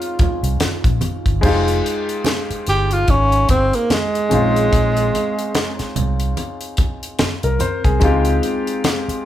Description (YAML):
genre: lush 1970s-style soul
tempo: 73 BPM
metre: 4/4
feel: swing 58% on 16ths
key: F minor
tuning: A4 = 441 Hz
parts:
  - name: breathy tenor saxophone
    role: melody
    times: 0.0-6.0 s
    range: Ab3 to G4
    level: -18 LUFS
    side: right 2 dB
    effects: none
  - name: warm concert grand piano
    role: accompaniment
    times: 0.0-9.3 s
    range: Ab3 to C5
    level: -22 LUFS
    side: left 2 dB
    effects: none
  - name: tight funk drum kit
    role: drums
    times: 0.0-9.2 s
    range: crash cymbal, hi-hat, kick drum, snare drum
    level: -20 LUFS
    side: equal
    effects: none
  - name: vibraphone with soft mallets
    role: texture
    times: 0.0-8.4 s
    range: C4 to F4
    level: -34 LUFS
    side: right 6 dB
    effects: none
  - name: vintage muted fingered electric bass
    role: bass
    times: 0.2-9.1 s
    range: F1 to Db2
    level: -20 LUFS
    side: equal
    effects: none
  - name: congas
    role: percussion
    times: 0.2-9.1 s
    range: none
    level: -27 LUFS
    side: right 2 dB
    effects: none
room: light reverb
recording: band playing live in one room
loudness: -15 LUFS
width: side -12 dB against mid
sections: 0.0-1.4 A section; 1.4-9.3 B section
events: tenor saxophone solo 1.4-9.3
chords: 0.0 Dbmaj7; 1.4 Fm7; 4.3 Bbm11; 8.0 Dbmaj9#11